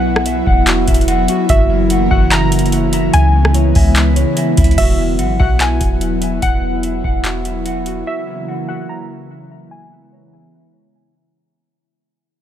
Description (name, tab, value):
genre	hip hop, atmospheric cloud-rap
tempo	146 BPM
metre	4/4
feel	half-time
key	E lydian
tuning	A4 = 440 Hz
part	warbly dusty pluck	melody	0.0-10.9 s	E5 to A#5	-22 LUFS	left 1 dB	chorus, low-pass filter, ping-pong delay
part	airy breathy pad	sustained chords	0.0-11.3 s	C#3 to E4	-18 LUFS	equal	chorus, sidechain pumping, low-pass filter
part	mellow electric guitar	arpeggios	0.0-11.4 s	E4 to F#5	-23 LUFS	right 1 dB	low-pass filter, ping-pong delay
part	soft 808-style bass	bass	0.0-8.0 s	E1 to C#2	-16 LUFS	equal	none
part	booming analog drum machine	drums	0.2-8.0 s	crash cymbal, handclaps, hi-hat, kick drum, rim click	-16 LUFS	equal	none
room	little or no reverb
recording	none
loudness	-12 LUFS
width	side -10 dB against mid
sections	0.0-4.8 A section; 4.8-11.4 B section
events	fade-out 4.8-11.4; filter sweep 4.8-11.4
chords	0.0 Esus2; 1.5 F#7; 3.1 C#m7; 4.8 Esus2; 8.1 F#7; 9.7 C#m7